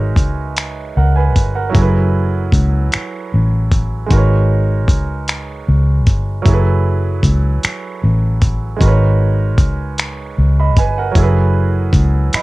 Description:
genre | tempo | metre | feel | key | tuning
slow six-eight R&B | 51 BPM (dotted quarters) | 6/8 | straight | F# dorian | A4 = 440 Hz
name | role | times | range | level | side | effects
clear concert grand piano | accompaniment | 0.0-12.4 s | F#3 to B5 | -21 LUFS | right 6 dB | cassette tape
vintage muted fingered electric bass | bass | 0.0-12.4 s | F#1 to C#2 | -14 LUFS | equal | none
dusty soul sampler-style drum kit | drums | 0.2-12.4 s | finger snaps, hi-hat, kick drum | -15 LUFS | equal | cassette tape
room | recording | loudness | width
digital ambience | home recording on cassette | -12 LUFS | side -20 dB against mid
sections
0.0-12.4 A section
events
none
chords
0.0 G#m11; 1.7 F#m11; 4.1 G#m11; 6.5 F#m11; 8.8 G#m11; 11.2 F#m11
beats
0.57 | 1.75 2.92 | 4.10 5.28 | 6.45 7.63 | 8.80 9.98 | 11.16 12.34

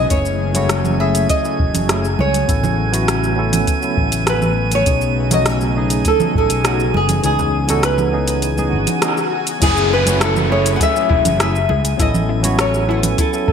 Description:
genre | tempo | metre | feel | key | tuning
sunset chillout | 101 BPM | 4/4 | straight | F# dorian | A4 = 439 Hz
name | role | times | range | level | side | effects
nylon-string guitar | melody | 0.0-13.5 s | F#4 to F#5 | -19 LUFS | equal | wide subtle chorus, ping-pong delay
barky tine electric piano | accompaniment | 0.0-13.5 s | E3 to A4 | -23 LUFS | moving between left 5 dB and right 4 dB | medium stereo tremolo, auto-pan, ping-pong delay
airy breathy pad | sustained chords | 0.0-9.6 s | C#3 to G#4 | -26 LUFS | left 2 dB | chorus, vintage 12-bit sampler grit
fretless electric bass | bass | 0.0-13.5 s | E1 to C#2 | -20 LUFS | equal | lush chorus
drifting glass-harmonics texture | texture | 0.0-13.5 s | G#5 | -26 LUFS | right 4 dB | chorus, built-in reverb
deep house drum kit | drums | 0.1-13.4 s | congas, crash cymbal, hi-hat, rim click, shaker | -21 LUFS | right 2 dB | studio reverb, gated reverb
electronic kick drum | drums | 0.1-13.5 s | none | -19 LUFS | equal | studio reverb
congas | percussion | 0.6-12.6 s | none | -28 LUFS | right 3 dB | none
swell and downlifter | sound effects | 8.6-13.5 s | none | -25 LUFS | left 1 dB | none
soft round pluck | arpeggios | 9.6-13.5 s | E4 to A4 | -26 LUFS | left 4 dB | wide subtle chorus, cassette tape, ping-pong delay
room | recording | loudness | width
moderate plate reverb, RT60 1.6 s | bright 1980s-style digital production | -14 LUFS | side -7 dB against mid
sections
0.0-9.6 A section; 9.6-13.5 B section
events
kick drops out 7.2-9.6; swell 8.6-9.6; band accent 9.0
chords
0.1 F#m9; 2.5 A69; 4.9 B13; 7.2 C#m7; 9.6 F#m9; 12.0 A69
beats
| 0.11 0.70 1.30 1.89 | 2.49 3.08 3.67 4.27 | 4.86 5.46 6.05 6.65 | 7.24 7.83 8.43 9.02 | 9.62 10.21 10.80 11.40 | 11.99 12.59 13.18

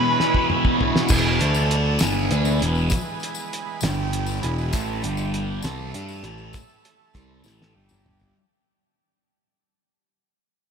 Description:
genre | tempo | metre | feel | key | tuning
psychedelic rock | 66 BPM (dotted quarters) | 6/8 | straight | unclear | A4 = 437 Hz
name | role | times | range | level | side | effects
octave-fuzz lead guitar | melody | 0.0-0.5 s | B4 | -26 LUFS | right 1 dB | distortion, tape echo
combo organ | sustained chords | 0.0-8.4 s | E3 to C#5 | -31 LUFS | right 5 dB | lush chorus
thick fuzz guitar | riff | 0.0-8.4 s | E2 to G4 | -24 LUFS | left 1 dB | distortion, phaser
cloth-damped thuddy drum kit | drums | 0.2-8.3 s | crash cymbal, hi-hat, kick drum, snare drum, toms | -25 LUFS | equal | none
picked electric bass | bass | 1.1-8.3 s | E1 to G2 | -25 LUFS | equal | none
tambourine | percussion | 1.1-8.3 s | none | -36 LUFS | left 9 dB | none
room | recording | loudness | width
moderate huge ambient reverb, RT60 6.2 s | dreamy mix soaked in reverb | -20 LUFS | side -6 dB against mid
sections
0.0-1.1 A section; 1.1-8.4 B section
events
break 0.0-1.1; drum fill 0.2-1.1, 7.4-8.4; fade-out 1.1-8.4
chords
0.0 E; 1.4 D5; 2.0 E; 3.8 G5; 4.4 E; 4.7 A5; 5.0 G5; 5.6 A5; 7.8 G5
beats
0.19 | 1.10 2.01 | 2.91 3.82 | 4.73 5.63 | 6.54 7.45

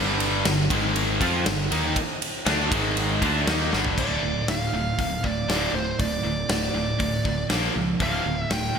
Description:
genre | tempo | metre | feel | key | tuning
hard rock | 119 BPM | 4/4 | straight | D minor | A4 = 440 Hz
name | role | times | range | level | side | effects
cranked stack guitar | riff | 0.0-4.0 s | G2 to F4 | -30 LUFS | left 1 dB | overdrive, phaser
heavy high-gain guitar | riff | 0.0-8.8 s | D2 to F4 | -28 LUFS | right 8 dB | distortion
tight distorted guitar | riff | 0.0-8.8 s | D2 to F4 | -29 LUFS | left 8 dB | distortion
modern bright picked electric bass | bass | 0.0-8.7 s | D1 to F2 | -29 LUFS | left 1 dB | none
big rock drum kit | drums | 0.2-8.6 s | crash cymbal, hi-hat, kick drum, ride cymbal, snare drum, toms | -27 LUFS | equal | none
bluesy overdriven lead guitar | melody | 4.0-8.8 s | C5 to G5 | -29 LUFS | right 2 dB | distortion
room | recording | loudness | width
moderate lush hall reverb, RT60 1.8 s, studio ambience | bright 1980s-style digital production | -21 LUFS | side -6 dB against mid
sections
0.0-4.0 A section; 4.0-8.8 B section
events
drum fill 3.7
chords
0.0 G5; 0.7 G#5; 1.2 G5; 2.7 G#5; 3.2 G5; 4.0 Dm; 7.5 Bb5; 8.0 Dm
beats
0.46 0.96 1.46 | 1.97 2.47 2.97 3.48 | 3.98 4.48 4.99 5.49 | 6.00 6.50 7.00 7.51 | 8.01 8.51

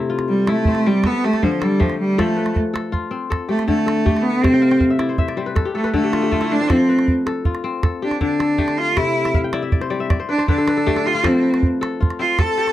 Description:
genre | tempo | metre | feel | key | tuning
west african traditional, West African string and xylophone music | 106 BPM (dotted quarters) | 12/8 | straight | F lydian | A4 = 440 Hz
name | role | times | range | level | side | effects
kora | arpeggios | 0.0-12.7 s | C3 to G5 | -22 LUFS | left 5 dB | none
calabash | percussion | 0.2-12.7 s | none | -20 LUFS | right 2 dB | none
bright cello | melody | 0.3-12.7 s | F3 to A4 | -18 LUFS | right 1 dB | none
room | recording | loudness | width
small room ambience | dry, close 1970s-style studio recording | -16 LUFS | side -13 dB against mid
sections
0.0-12.7 A section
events
cello solo 0.0-12.7; kora fill 4.5-6.7, 9.3-11.2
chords
0.0 C; 1.0 D5; 2.2 F; 3.3 Dm; 4.4 C; 5.6 D5; 6.7 F; 7.8 Dm; 9.0 C; 10.1 D5; 11.2 F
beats
0.47 1.03 1.60 | 2.17 2.73 3.30 3.87 | 4.43 5.00 5.57 6.13 | 6.70 7.27 7.84 8.40 | 8.97 9.54 10.11 10.68 | 11.24 11.81 12.38

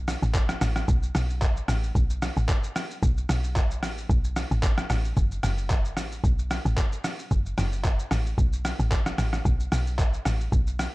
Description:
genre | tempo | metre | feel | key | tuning
amapiano | 112 BPM | 4/4 | swing 55% on 16ths | unclear | A4 = 439 Hz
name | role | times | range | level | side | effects
tight log drum bass | bass | 0.0-10.9 s | F#1 to B1 | -26 LUFS | equal | none
trip hop sampler-style drum kit | drums | 0.1-10.9 s | handclaps, hi-hat, kick drum, rim click, shaker | -26 LUFS | equal | none
room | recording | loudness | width
little or no reverb | dark, warm production | -23 LUFS | side -21 dB against mid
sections
0.0-10.9 A section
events
none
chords
none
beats
0.35 | 0.88 1.42 1.95 2.49 | 3.02 3.56 4.10 4.63 | 5.17 5.70 6.24 6.78 | 7.31 7.85 8.38 8.92 | 9.45 9.99 10.53

